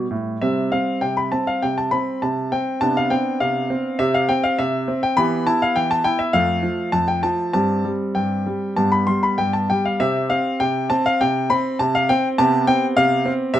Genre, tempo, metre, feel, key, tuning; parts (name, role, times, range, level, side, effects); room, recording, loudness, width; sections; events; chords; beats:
classical-period piano sonatina; 101 BPM; 4/4; rubato; C major; A4 = 441 Hz
bright concert grand piano; solo; 0.0-13.6 s; F2 to C6; -18 LUFS; equal
light reverb; close, detailed microphones; -17 LUFS; side -12 dB against mid
0.4-13.6 A section
0.4 C5; 2.8 Am11/C; 4.0 C5; 5.2 Em; 6.3 F; 7.5 C5/G; 8.8 G; 10.0 C5; 12.4 G7/C
| 0.43 1.03 1.63 2.23 | 2.82 3.41 4.00 4.59 | 5.18 5.76 6.34 6.93 | 7.54 8.15 8.77 9.38 | 10.00 10.60 11.20 11.79 | 12.38 12.96 13.54